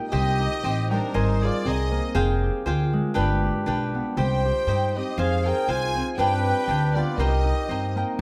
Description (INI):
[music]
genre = mexican folk, mariachi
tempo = 119 BPM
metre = 2/4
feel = swing 54% on 8ths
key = C minor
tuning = A4 = 441 Hz
[part]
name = cavaquinho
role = accompaniment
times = 0.0-8.2 s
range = D4 to Bb5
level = -32 LUFS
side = equal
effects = none
[part]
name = concert harp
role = arpeggios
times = 0.0-8.2 s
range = G3 to C5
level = -30 LUFS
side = equal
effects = none
[part]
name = clear studio violin section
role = melody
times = 0.1-2.1, 4.2-8.0 s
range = Bb4 to Ab5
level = -32 LUFS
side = equal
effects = none
[part]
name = mellow trumpet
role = second line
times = 0.1-2.0, 4.2-8.0 s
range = D4 to C5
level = -33 LUFS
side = equal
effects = none
[part]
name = upright bass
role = bass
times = 0.1-8.2 s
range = F1 to G2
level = -27 LUFS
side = equal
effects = none
[sound]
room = moderate recital hall reverb, RT60 1.3 s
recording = none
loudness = -24 LUFS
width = mono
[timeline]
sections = 0.1-8.2 A section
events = none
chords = 0.1 Cm; 1.1 Abadd9; 2.2 Fmadd9; 3.2 G; 4.2 Cm; 5.2 Fm; 6.2 G; 7.2 Cm7